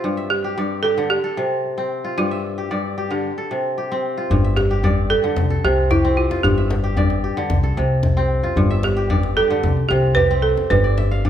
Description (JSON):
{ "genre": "west african traditional, West African string and xylophone music", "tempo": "112 BPM", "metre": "4/4", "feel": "straight", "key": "unclear", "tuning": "A4 = 440 Hz", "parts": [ { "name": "kora", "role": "arpeggios", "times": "0.0-11.3 s", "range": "G2 to F5", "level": "-22 LUFS", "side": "left 2 dB", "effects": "none" }, { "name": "balafon", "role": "melody", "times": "0.3-11.3 s", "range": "E4 to B4", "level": "-20 LUFS", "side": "right 3 dB", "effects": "none" }, { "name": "upright bass", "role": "bass", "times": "4.3-11.3 s", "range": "G1 to C2", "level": "-20 LUFS", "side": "equal", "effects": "none" }, { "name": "djembe", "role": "percussion", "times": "4.3-11.3 s", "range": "none", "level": "-23 LUFS", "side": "left 2 dB", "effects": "none" } ], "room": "moderate recital hall reverb, RT60 1.3 s", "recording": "none", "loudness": "-17 LUFS", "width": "side -10 dB against mid", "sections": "0.0-4.3 A section; 4.3-11.3 A section", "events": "kora fill 10.8-11.3", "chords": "0.0 G5; 1.1 C5; 2.2 G5; 3.2 C5; 4.3 G5; 5.4 C5; 6.4 G5; 7.5 C5; 8.6 G5; 9.6 C5; 10.7 G", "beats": "| 0.03 0.57 1.10 1.64 | 2.17 2.70 3.24 3.77 | 4.30 4.84 5.37 5.90 | 6.44 6.97 7.50 8.03 | 8.57 9.10 9.64 10.17 | 10.70 11.24" }